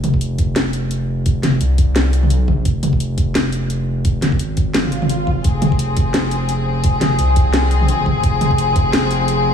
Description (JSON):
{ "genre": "half-time drum and bass", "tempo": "172 BPM", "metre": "4/4", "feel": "swing 57% on 16ths, half-time", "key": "F minor", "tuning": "A4 = 440 Hz", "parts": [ { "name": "saturated sub bass", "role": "bass", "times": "0.0-9.5 s", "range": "F1 to C2", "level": "-18 LUFS", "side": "equal", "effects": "none" }, { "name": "drum and bass drum kit", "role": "drums", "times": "0.0-9.4 s", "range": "hi-hat, snare drum, toms", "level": "-20 LUFS", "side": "equal", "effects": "none" }, { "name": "electronic kick drum", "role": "drums", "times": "0.1-8.8 s", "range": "none", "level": "-18 LUFS", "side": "equal", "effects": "none" }, { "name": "swell", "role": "sound effects", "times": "4.9-5.4 s", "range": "none", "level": "-28 LUFS", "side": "right 2 dB", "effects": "none" }, { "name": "rich chamber string section", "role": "sustained chords", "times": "5.4-9.5 s", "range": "F3 to Ab4", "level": "-19 LUFS", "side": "left 3 dB", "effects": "vintage 12-bit sampler grit, sidechain pumping" } ], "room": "light reverb, digital ambience", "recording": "small room ambience", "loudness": "-14 LUFS", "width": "side -8 dB against mid", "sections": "0.0-9.5 A section", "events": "swell 4.9-5.4", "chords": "0.0 Fm", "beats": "0.21 0.56 0.91 | 1.26 1.61 1.96 2.31 | 2.66 3.00 3.35 3.70 | 4.05 4.40 4.75 5.10 | 5.45 5.79 6.14 6.49 | 6.84 7.19 7.54 7.89 | 8.24 8.59 8.94 9.28" }